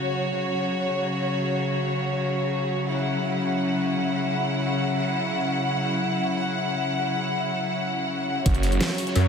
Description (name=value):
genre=dark technical drum and bass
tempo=free time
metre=none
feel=none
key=unclear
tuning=A4 = 440 Hz
part: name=clear studio string section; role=sustained chords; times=0.0-9.3 s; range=C#3 to F#5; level=-23 LUFS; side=left 1 dB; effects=vintage 12-bit sampler grit, sidechain pumping
part: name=phased detuned saw bass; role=bass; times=8.5-9.3 s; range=F#1 to F#2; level=-20 LUFS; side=right 1 dB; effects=phaser, overdrive, sidechain pumping
part: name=crunchy breakbeat drum kit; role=drums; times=8.5-9.2 s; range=hi-hat, snare drum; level=-36 LUFS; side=right 1 dB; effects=none
part: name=dubstep drum kit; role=drums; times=8.5-9.2 s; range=hi-hat, rim click, snare drum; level=-28 LUFS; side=equal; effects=overdrive
part: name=electronic kick drum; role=drums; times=8.5 s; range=none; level=-21 LUFS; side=right 1 dB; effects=overdrive
room=wet huge ambient reverb, RT60 7.7 s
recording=dreamy mix soaked in reverb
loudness=-23 LUFS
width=side -6 dB against mid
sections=0.0-8.5 A section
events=none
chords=0.0 F#5